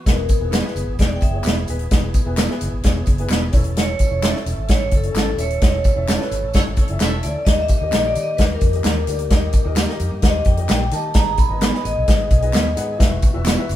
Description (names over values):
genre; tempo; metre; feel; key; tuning
uptempo 1960s-style soul; 130 BPM; 4/4; straight; E major; A4 = 440 Hz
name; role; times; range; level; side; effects
dark upright piano; accompaniment; 0.0-13.8 s; G#2 to F#5; -30 LUFS; left 3 dB; none
tonewheel organ; sustained chords; 0.0-13.8 s; D#3 to A4; -36 LUFS; right 1 dB; overdrive, fast rotary speaker
vibraphone with medium hard mallets; melody; 0.1-13.0 s; A4 to B5; -24 LUFS; left 1 dB; none
vintage muted fingered electric bass; bass; 0.1-13.8 s; D#1 to D#3; -24 LUFS; equal; none
natural country drum kit; drums; 0.1-13.8 s; hi-hat, kick drum, snare drum; -18 LUFS; equal; none
tambourine and handclaps; percussion; 0.1-13.8 s; none; -33 LUFS; left 1 dB; none
mellow electric guitar; stabs; 0.5-13.6 s; A3 to B4; -28 LUFS; right 3 dB; spring reverb
warm horn section; second line; 6.5-7.3 s; E4 to E5; -30 LUFS; right 1 dB; none
room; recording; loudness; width
moderate stone room reverb, RT60 1.2 s; band playing live in one room; -16 LUFS; side -12 dB against mid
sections
0.1-13.8 A section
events
vibraphone solo 0.1-13.8; band accent 5.6-7.5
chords
0.1 E; 3.5 A; 7.5 D#; 11.2 G#m; 13.0 Esus2